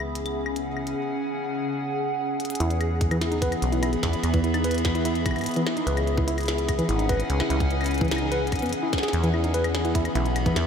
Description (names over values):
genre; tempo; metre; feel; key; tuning
IDM; 147 BPM; 4/4; straight; E major; A4 = 440 Hz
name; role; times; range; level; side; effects
warbly tape-like pad; sustained chords; 0.0-10.7 s; C#3 to B5; -27 LUFS; left 1 dB; chorus, built-in reverb, phaser, shimmer reverb
deep acid bass; bass; 0.0-10.7 s; G#1 to G#2; -26 LUFS; equal; none
glitchy drum kit; drums; 0.0-10.6 s; claves, hi-hat, snare drum; -32 LUFS; left 1 dB; studio reverb, tape echo
pulsing gated texture; texture; 0.0-1.0 s; E4 to E5; -50 LUFS; right 2 dB; none
tine electric piano; arpeggios; 2.6-10.6 s; E3 to B4; -28 LUFS; equal; ping-pong delay, shimmer reverb
electronic kick drum; drums; 3.0-10.5 s; none; -27 LUFS; equal; studio reverb
room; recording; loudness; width
moderate huge ambient reverb, RT60 7.5 s; dreamy mix soaked in reverb; -22 LUFS; side -7 dB against mid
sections
0.0-2.6 A section; 2.6-10.7 B section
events
filter sweep on ambient pad 0.0-2.6; drum fill 2.4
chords
0.0 C#sus4; 2.6 E; 5.9 C#sus4; 9.1 E